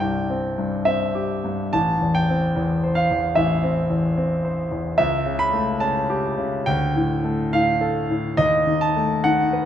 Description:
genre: classical, romantic character piece for solo piano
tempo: 68-75 BPM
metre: 4/4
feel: rubato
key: unclear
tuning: A4 = 440 Hz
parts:
  - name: clear concert grand piano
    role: solo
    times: 0.0-9.7 s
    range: A1 to C6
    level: -19 LUFS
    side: equal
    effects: none
room: wet recital hall reverb, RT60 1.6 s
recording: none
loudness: -19 LUFS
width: side -10 dB against mid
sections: 0.0-9.7 A section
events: none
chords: 0.0 C; 1.7 Am; 5.0 A7/C#; 6.7 Dm; 8.4 B7/D# (rootless)

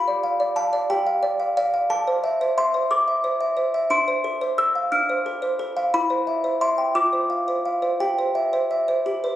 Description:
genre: classical, lullaby for music box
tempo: 60 BPM (dotted quarters)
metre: 6/8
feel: straight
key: C major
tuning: A4 = 440 Hz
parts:
  - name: music box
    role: solo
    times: 0.0-9.4 s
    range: D4 to F6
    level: -20 LUFS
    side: equal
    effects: none
room: light reverb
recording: recorded on a phone in the room, studio reverb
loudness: -20 LUFS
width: side -13 dB against mid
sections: 0.0-9.4 A section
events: none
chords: 0.0 G7; 1.9 Am; 3.9 Dm7; 5.9 C/E; 7.0 Dm7/F; 8.0 C/G

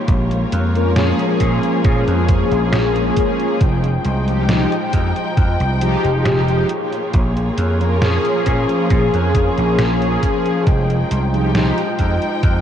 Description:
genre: vaporwave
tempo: 68 BPM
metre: 4/4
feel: straight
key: unclear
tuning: A4 = 439 Hz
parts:
  - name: rich studio string section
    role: sustained chords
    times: 0.0-12.6 s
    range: F3 to G5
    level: -22 LUFS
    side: left 1 dB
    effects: none
  - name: vintage slap bass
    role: bass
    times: 0.1-12.6 s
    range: F1 to Bb2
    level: -18 LUFS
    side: equal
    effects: none
  - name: detuned 8-bit digital drum machine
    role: drums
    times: 0.1-12.6 s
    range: hi-hat, snare drum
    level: -25 LUFS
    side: right 1 dB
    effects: none
  - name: electronic kick drum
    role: drums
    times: 0.1-12.6 s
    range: none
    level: -17 LUFS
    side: equal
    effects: none
  - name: mellow synth brass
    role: accompaniment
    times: 0.7-11.8 s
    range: F3 to Bb4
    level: -19 LUFS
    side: left 1 dB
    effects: wide subtle chorus, diffuse ambient delay
room: wet cathedral reverb, RT60 4.9 s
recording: dreamy mix soaked in reverb, cassette tape, nothing above 10.8 kHz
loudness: -14 LUFS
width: side -9 dB against mid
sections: 0.0-12.6 A section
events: none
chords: 0.0 Bbm7; 3.6 Fm9; 6.7 Bbm7; 10.7 Fm9

